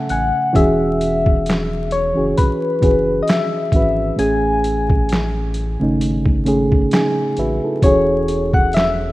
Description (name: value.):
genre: lo-fi hip hop.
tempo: 66 BPM.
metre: 4/4.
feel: swing 57% on 16ths.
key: E major.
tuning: A4 = 440 Hz.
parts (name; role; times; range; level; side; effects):
soft struck synth lead; melody; 0.0-9.1 s; A4 to G#5; -20 LUFS; left 2 dB; chorus, tremolo, tape echo.
mellow reed electric piano; accompaniment; 0.0-9.1 s; A2 to G#5; -18 LUFS; right 1 dB; cassette tape.
round analog bass; bass; 0.1-9.1 s; E1 to A1; -24 LUFS; equal; none.
trip hop sampler-style drum kit; drums; 0.1-9.0 s; handclaps, hi-hat, kick drum, snare drum; -18 LUFS; equal; vintage 12-bit sampler grit.
room: light reverb.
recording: rough home demo mix, vinyl crackle.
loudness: -14 LUFS.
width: side -17 dB against mid.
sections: 0.0-9.1 A section.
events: none.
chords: 0.0 Amaj7; 0.6 E69; 4.2 Amaj7; 7.8 E69.